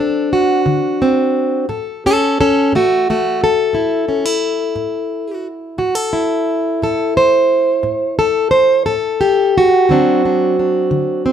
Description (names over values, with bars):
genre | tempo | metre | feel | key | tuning
acoustic country blues, solo or duo | 58 BPM (dotted quarters) | 12/8 | straight | unclear | A4 = 440 Hz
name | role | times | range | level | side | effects
fingerpicked plugged-in steel-string acoustic guitar | solo | 0.0-11.3 s | A2 to C5 | -13 LUFS | equal | none
room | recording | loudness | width
light reverb | none | -13 LUFS | side -9 dB against mid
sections
0.0-11.3 A section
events
none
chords
0.0 D7; 1.7 A5; 9.9 D7